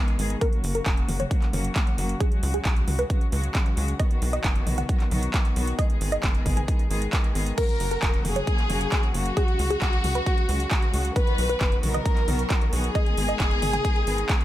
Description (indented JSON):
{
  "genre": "uplifting trance",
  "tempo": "134 BPM",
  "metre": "4/4",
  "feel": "straight",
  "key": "G# minor",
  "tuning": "A4 = 441 Hz",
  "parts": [
    { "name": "wide unison pluck", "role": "melody", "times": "0.0-14.4 s", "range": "G#4 to G#5", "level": "-31 LUFS", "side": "right 1 dB", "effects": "sidechain pumping, digital delay" },
    { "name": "warm studio string section", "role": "sustained chords", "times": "0.0-14.4 s", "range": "C#3 to G#4", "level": "-32 LUFS", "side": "left 1 dB", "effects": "sidechain pumping, low-pass filter" },
    { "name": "big-room dance drum kit", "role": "drums", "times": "0.1-14.4 s", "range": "crash cymbal, handclaps, hi-hat, toms", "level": "-31 LUFS", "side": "equal", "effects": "none" },
    { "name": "tight sequencer bass", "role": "bass", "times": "0.2-14.2 s", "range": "E1 to C#2", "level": "-27 LUFS", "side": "equal", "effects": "sidechain pumping" },
    { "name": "electronic kick drum", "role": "drums", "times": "0.4-14.4 s", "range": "none", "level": "-23 LUFS", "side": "equal", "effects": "none" },
    { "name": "warm chamber violin section", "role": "second line", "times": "7.6-14.4 s", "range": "F#4 to B4", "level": "-28 LUFS", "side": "left 1 dB", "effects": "digital delay" }
  ],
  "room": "digital ambience",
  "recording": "none",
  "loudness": "-22 LUFS",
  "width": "side -14 dB against mid",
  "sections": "0.0-14.4 A section",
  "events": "none",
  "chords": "0.4 F#; 2.2 C#sus4; 4.0 B; 5.8 G#m; 7.6 F#; 9.4 C#sus4; 11.2 B; 13.0 G#m",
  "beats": "| 0.41 0.86 1.31 1.76 | 2.21 2.65 3.10 3.55 | 4.00 4.44 4.89 5.34 | 5.79 6.23 6.68 7.13 | 7.58 8.03 8.47 8.92 | 9.37 9.82 10.26 10.71 | 11.16 11.61 12.05 12.50 | 12.95 13.40 13.85 14.29"
}